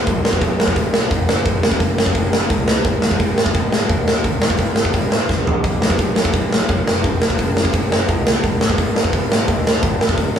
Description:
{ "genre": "punk rock", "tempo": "172 BPM", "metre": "4/4", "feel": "straight", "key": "unclear", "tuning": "A4 = 438 Hz", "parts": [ { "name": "fuzz picked electric bass", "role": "bass", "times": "0.1-10.4 s", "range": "E#1 to F#2", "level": "-22 LUFS", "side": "equal", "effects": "overdrive" }, { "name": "big rock drum kit", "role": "drums", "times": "0.1-10.4 s", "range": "hi-hat, kick drum, snare drum, toms", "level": "-16 LUFS", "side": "equal", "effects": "none" } ], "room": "light reverb", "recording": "band playing live in one room, small room ambience", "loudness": "-15 LUFS", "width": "side -8 dB against mid", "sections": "0.0-10.4 A section", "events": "drum fill 5.3-5.6", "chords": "none" }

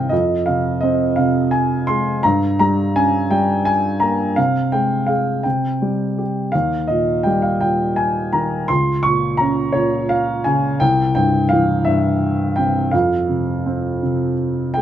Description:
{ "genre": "classical, lyrical solo piano", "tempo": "56 BPM (dotted quarters)", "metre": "6/8", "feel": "rubato", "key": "F minor", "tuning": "A4 = 443 Hz", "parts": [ { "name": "dark grand piano", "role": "solo", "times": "0.0-14.8 s", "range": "C2 to Db6", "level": "-16 LUFS", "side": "equal", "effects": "none" } ], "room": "light reverb", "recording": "minimal, uncompressed stereo recording", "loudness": "-16 LUFS", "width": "side -10 dB against mid", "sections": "0.0-14.8 A section", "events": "none", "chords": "0.1 Fm; 2.2 Gdim; 4.4 Fmadd9/C; 5.4 C5; 6.5 Eb; 8.7 Bbm/Db; 10.8 C; 12.9 F5" }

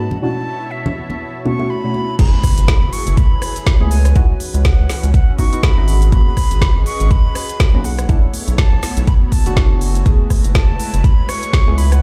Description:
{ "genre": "deep house", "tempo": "122 BPM", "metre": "4/4", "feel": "swing 57% on 16ths", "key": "F# minor", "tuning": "A4 = 440 Hz", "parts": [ { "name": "breathy bright jazz flute", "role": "melody", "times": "0.0-12.0 s", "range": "E5 to C#6", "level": "-29 LUFS", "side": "equal", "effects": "tape echo" }, { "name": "warm analog pad", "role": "sustained chords", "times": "0.0-12.0 s", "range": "B2 to A5", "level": "-33 LUFS", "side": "equal", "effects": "chorus, sidechain pumping" }, { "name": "warbly tape-like pad", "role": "texture", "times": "0.1-12.0 s", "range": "G#3 to E6", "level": "-35 LUFS", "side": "equal", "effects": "chorus, built-in reverb, sidechain pumping" }, { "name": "congas", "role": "percussion", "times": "0.1-2.1 s", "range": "none", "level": "-28 LUFS", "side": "equal", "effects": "sidechain pumping on perc" }, { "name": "deep mellow chord stab", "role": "stabs", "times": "0.2-11.8 s", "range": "B2 to G#4", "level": "-26 LUFS", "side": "equal", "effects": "chorus, sidechain pumping, tape echo" }, { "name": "round analog bass", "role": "bass", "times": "2.2-12.0 s", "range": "F#1 to C#2", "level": "-17 LUFS", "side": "equal", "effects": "sidechain pumping" }, { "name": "deep house drum kit", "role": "drums", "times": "2.2-12.0 s", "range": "crash cymbal, hi-hat, rim click, shaker, snare drum", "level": "-26 LUFS", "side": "equal", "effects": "low-pass filter on hats, studio reverb, low-pass filter on cymbals, low-pass filter on perc, low-pass filter on snare" }, { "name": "electronic kick drum", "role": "drums", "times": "2.2-11.6 s", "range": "none", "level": "-15 LUFS", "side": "equal", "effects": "studio reverb" }, { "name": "impact", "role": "sound effects", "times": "2.2-4.2 s", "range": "none", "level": "-26 LUFS", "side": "equal", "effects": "none" } ], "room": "little or no reverb", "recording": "played on a big sound system in a bare room, stone room reverb", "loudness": "-15 LUFS", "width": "mono", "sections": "0.0-2.2 A section; 2.2-12.0 B section", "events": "drop 2.2-12.0; impact 2.2-4.2", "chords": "0.0 Bm11; 2.2 F#m11; 4.2 C#m11; 6.1 G#m11; 7.8 Bm11; 10.1 F#m11" }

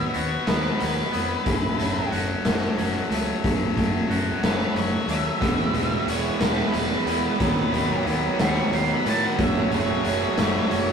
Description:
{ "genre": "quiet-loud alternative rock", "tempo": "61 BPM (dotted quarters)", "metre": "6/8", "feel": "straight", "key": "F# dorian", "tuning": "A4 = 442 Hz", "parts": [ { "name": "octave-fuzz lead guitar", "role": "melody", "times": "0.0-10.9 s", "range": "B4 to C#6", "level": "-29 LUFS", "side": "equal", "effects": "distortion" }, { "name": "twangy electric guitar", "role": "arpeggios", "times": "0.0-5.4 s", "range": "F#2 to F#4", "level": "-29 LUFS", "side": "right 3 dB", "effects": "none" }, { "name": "high-gain distorted guitar", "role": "riff", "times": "0.0-10.9 s", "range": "E2 to B3", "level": "-28 LUFS", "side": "left 7 dB", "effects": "distortion" }, { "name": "fuzz fingered electric bass", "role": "bass", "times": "0.0-10.9 s", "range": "E1 to A2", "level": "-30 LUFS", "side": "left 1 dB", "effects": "overdrive" }, { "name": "raw garage drum kit", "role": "drums", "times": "0.1-10.9 s", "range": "hi-hat, kick drum, snare drum", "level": "-25 LUFS", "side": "equal", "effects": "none" }, { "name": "thick fuzz guitar", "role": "riff", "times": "5.4-10.9 s", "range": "F#2 to E4", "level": "-25 LUFS", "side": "right 5 dB", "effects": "distortion" } ], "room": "moderate stone room reverb, RT60 1.3 s", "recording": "rough rehearsal-room recording, tube saturation", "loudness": "-21 LUFS", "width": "side -6 dB against mid", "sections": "0.0-10.9 A section", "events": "lead electric guitar solo 0.0-10.9", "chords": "0.0 B/D#; 1.5 F#m; 5.4 E; 7.4 B/D#; 9.4 F#m" }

